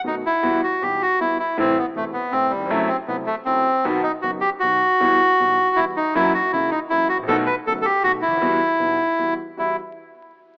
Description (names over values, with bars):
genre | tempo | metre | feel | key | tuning
tango | 158 BPM | 3/4 | rubato | E harmonic minor | A4 = 440 Hz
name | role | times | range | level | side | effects
warm concert grand piano | accompaniment | 0.0-9.7 s | E1 to F#4 | -25 LUFS | equal | none
bandoneon | melody | 0.1-9.8 s | G3 to B4 | -18 LUFS | equal | none
room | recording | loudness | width
moderate plate reverb, RT60 2.8 s | rough home demo mix, vinyl crackle, AM radio sound | -17 LUFS | side -36 dB against mid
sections
0.4-9.6 A section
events
none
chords
0.0 B7; 0.4 Emadd9; 1.6 Am; 2.7 F#m7b5; 3.9 B; 5.0 Emadd9; 6.2 F#7; 7.3 B7; 8.4 Emadd9